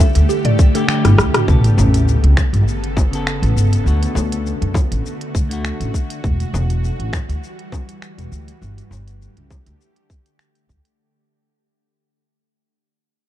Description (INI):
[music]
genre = organic downtempo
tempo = 101 BPM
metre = 4/4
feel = swing 54% on 16ths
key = unclear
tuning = A4 = 440 Hz
[part]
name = electric slide guitar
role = melody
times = 0.0-0.9 s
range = A4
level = -34 LUFS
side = left 2 dB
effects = none
[part]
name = semi-hollow electric guitar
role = accompaniment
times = 0.0-6.2 s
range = C#3 to A4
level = -25 LUFS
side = left 2 dB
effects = sidechain pumping, ping-pong delay
[part]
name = bowed-like drone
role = sustained chords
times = 0.1-11.0 s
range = C#3 to A4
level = -26 LUFS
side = equal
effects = built-in reverb, sidechain pumping
[part]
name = mallet-like synth pluck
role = arpeggios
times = 0.0-1.5 s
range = E4 to E5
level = -25 LUFS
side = right 2 dB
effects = chorus, phaser, cassette tape, ping-pong delay
[part]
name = upright bass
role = bass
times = 0.0-10.8 s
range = E1 to F#2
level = -16 LUFS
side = equal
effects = sidechain pumping
[part]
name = electronic kick drum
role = drums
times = 0.0-10.8 s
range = none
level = -15 LUFS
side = equal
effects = small room ambience
[part]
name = organic electronic drum kit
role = drums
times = 0.0-11.0 s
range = finger snaps, hi-hat, rim click, shaker, toms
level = -22 LUFS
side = equal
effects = small room ambience
[part]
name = sub drop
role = sound effects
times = 1.5-3.9 s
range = none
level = -19 LUFS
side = equal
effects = none
[part]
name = frame drum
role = percussion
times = 1.8-9.6 s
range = none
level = -26 LUFS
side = left 2 dB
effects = none
[sound]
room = little or no reverb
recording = dark, warm production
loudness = -14 LUFS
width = side -13 dB against mid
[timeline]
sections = 0.0-1.5 A section; 1.5-11.0 B section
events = drum fill 1.0-1.5; fade-out 1.5-11.0; impact 1.5-3.9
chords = 0.0 Gsus2; 1.5 Aadd9; 3.9 D; 6.2 Emadd9; 8.6 Gsus2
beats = 0.29 0.89 | 1.48 2.08 2.67 3.26 | 3.86 4.45 5.05 5.64 | 6.23 6.83 7.42 8.02 | 8.61 9.20 9.80 10.39